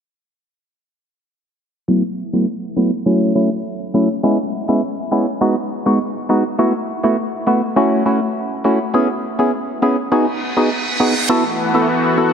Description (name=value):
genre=dancehall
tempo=102 BPM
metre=4/4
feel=straight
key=unclear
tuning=A4 = 441 Hz
part: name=percussive organ stab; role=accompaniment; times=1.9-12.3 s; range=F#3 to A4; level=-15 LUFS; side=equal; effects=chorus, low-pass filter
part: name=reverse cymbal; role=sound effects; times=10.3-11.3 s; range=none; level=-23 LUFS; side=right 2 dB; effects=none
part: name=lush unison pad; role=sustained chords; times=11.3-12.3 s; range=E3 to F#4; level=-16 LUFS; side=left 1 dB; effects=chorus
room=wet cathedral reverb, RT60 4.6 s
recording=dreamy mix soaked in reverb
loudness=-15 LUFS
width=side -7 dB against mid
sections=1.9-11.3 A section; 11.3-12.3 B section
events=filter sweep on synth stab 1.9-11.3; reverse cymbal 10.3-11.3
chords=1.9 B7sus4; 3.1 F#m7; 4.2 E6; 5.4 G#m7; 6.6 B7sus4; 7.8 F#m7; 8.9 E6; 10.1 G#m7; 11.3 B7sus4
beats=| 1.88 2.47 3.06 3.65 | 4.24 4.82 5.41 6.00 | 6.59 7.18 7.76 8.35 | 8.94 9.53 10.12 10.71 | 11.29 11.88